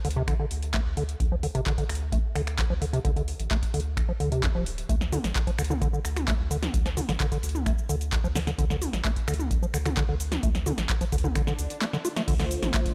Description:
acid house; 130 BPM; 4/4; straight; D minor; A4 = 441 Hz
acid bass, square; riff; 0.0-12.8 s; D2 to F4; -34 LUFS; equal; sidechain pumping, delay
round analog bass; bass; 0.0-12.7 s; D1 to D2; -33 LUFS; equal; sidechain pumping
electro analog drum machine; drums; 0.0-12.9 s; crash cymbal, finger snaps, handclaps, hi-hat, shaker, snare drum, toms; -34 LUFS; equal
electronic kick drum; drums; 0.3-12.9 s; -30 LUFS; equal
swell; sound effects; 11.5-12.3 s; -45 LUFS; equal
warm analog pad; sustained chords; 12.3-12.9 s; D3 to C5; -34 LUFS; equal; chorus, sidechain pumping
little or no reverb; -27 LUFS; mono
0.0-12.3 A section
swell 11.5-12.3; drum fill 11.8-12.3
0.0 N.C.; 12.3 Dm7

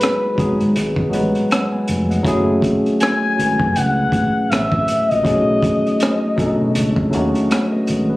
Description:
R&B, neo-soul; 80 BPM; 4/4; swing 58% on 16ths; F# dorian; A4 = 440 Hz
expressive portamento lead; melody; 0.0-7.3 s; B4 to G#5; -20 LUFS; left 2 dB; chorus, phaser
barky tine electric piano; accompaniment; 0.0-8.2 s; F#3 to G#5; -18 LUFS; equal; overdrive, wide subtle chorus
crunchy breakbeat drum kit; drums; 0.0-8.1 s; hi-hat, kick drum, rim click; -22 LUFS; equal
fingered electric bass; bass; 0.4-8.2 s; E#1 to B2; -21 LUFS; equal
light reverb, small room reverb; recorded on a phone in the room, club reverb, compression; -15 LUFS; side -18 dB against mid
0.0-8.2 A section
0.0 G#m7; 2.2 F#m9; 5.2 B13

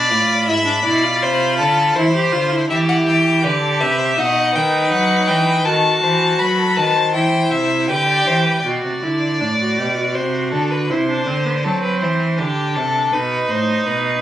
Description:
classical, baroque-style fugue for string quartet; 81 BPM; 4/4; straight; A4 = 440 Hz
rich violin; melody; 0.0-8.6 s; D5 to B5; -18 LUFS; left 4 dB
rich violin; second line; 0.0-14.2 s; G4 to E5; -20 LUFS; left 2 dB
clear viola; accompaniment; 0.0-14.2 s; B3 to G4; -20 LUFS; right 1 dB
clear cello; bass; 0.0-14.2 s; G#2 to F#3; -21 LUFS; right 2 dB
light reverb; recorded on a phone in the room, studio ambience; -15 LUFS; side -12 dB against mid
0.0-8.6 A section; 8.6-14.2 B section
0.0 E7; 1.2 Am/C; 2.7 Em; 4.2 B; 5.7 B7/D#; 7.1 Em; 8.6 G/B; 10.2 C; 11.6 F#dim; 13.1 B

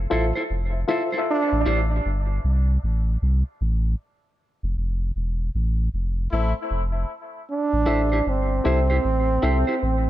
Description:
reggae; 77 BPM; 4/4; swing 62% on 16ths; A minor; A4 = 440 Hz
warm sub bass; bass; 0.0-10.1 s; E1 to C2; -22 LUFS; equal
electric guitar at the edge of break-up; accompaniment; 0.1-1.8, 7.9-9.7 s; E4 to C5; -28 LUFS; right 2 dB; dub echo
reed electric piano; stabs; 0.1-1.1, 7.9-9.6 s; F4 to E5; -28 LUFS; left 4 dB; fast tremolo, dub echo
warm trombone; melody; 1.3-1.6, 7.5-10.1 s; C4 to D4; -24 LUFS; right 3 dB; dub echo
warm horn section; second line; 6.3-6.5 s; A3 to E4; -29 LUFS; left 4 dB; dub echo
small room reverb; echo-heavy mix; -21 LUFS; side -14 dB against mid
0.0-7.5 A section; 7.5-10.1 B section
0.0 Fmaj7; 1.3 Am7; 4.4 F; 7.5 Am7

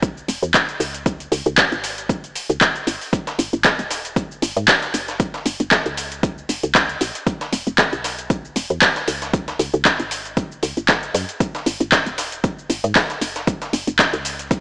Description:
deep house; 116 BPM; 4/4; swing 55% on 16ths; G# minor; A4 = 440 Hz
woody FM bass; bass; 0.0-14.6 s; D#1 to G#2; -22 LUFS; equal; sidechain pumping
deep house drum kit; drums; 0.0-14.6 s; handclaps, hi-hat, shaker; -18 LUFS; equal; overdrive, studio reverb
electronic kick drum; drums; 0.0-14.6 s; -20 LUFS; equal; overdrive, studio reverb
breakbeat sampler-style drum kit; drums; 3.1-14.6 s; hi-hat, snare drum; -27 LUFS; equal
moderate lush hall reverb, RT60 1.9 s; small speaker sound; -17 LUFS; side -25 dB against mid
0.0-14.6 A section

